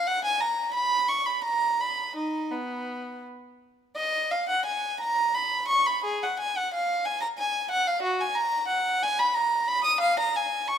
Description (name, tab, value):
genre	classical, baroque-style suite movement for unaccompanied violin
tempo	81-92 BPM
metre	3/4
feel	rubato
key	B major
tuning	A4 = 440 Hz
part	warm violin	solo	0.0-10.8 s	B3 to D#6	-24 LUFS	equal	none
room	moderate recital hall reverb, RT60 1.7 s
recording	minimal, uncompressed stereo recording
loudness	-24 LUFS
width	side -8 dB against mid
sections	0.0-4.0 A section; 4.0-10.8 A section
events	none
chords	none